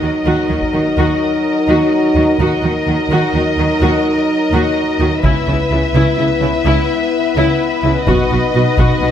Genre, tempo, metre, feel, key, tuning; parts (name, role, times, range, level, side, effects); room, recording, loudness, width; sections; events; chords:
cinematic, epic orchestral film score; 85 BPM (dotted quarters); 12/8; straight; Eb phrygian; A4 = 440 Hz
warm symphonic violin section; melody; 0.0-9.1 s; Eb5 to Fb5; -21 LUFS; left 4 dB
warm symphonic violin section; second line; 0.0-9.1 s; Bb4 to Cb5; -23 LUFS; left 3 dB
rich studio viola section; accompaniment; 0.0-9.1 s; Fb4 to Gb4; -20 LUFS; left 1 dB
clear French horn section; sustained chords; 0.0-9.1 s; Gb3 to Fb4; -17 LUFS; left 1 dB
rich symphonic cello section; bass; 0.0-9.1 s; B2 to Eb3; -20 LUFS; right 2 dB
warm symphonic double bass section; bass; 0.0-9.1 s; B1 to Eb2; -19 LUFS; right 2 dB
taiko ensemble; drums; 0.6-0.8, 5.2-9.1 s; -18 LUFS; equal
moderate scoring stage reverb, RT60 1.6 s; -12 LUFS; side -9 dB against mid
0.0-9.1 A section
build-up 0.0-9.1
0.0 Ebm; 5.2 Dbm7; 8.1 B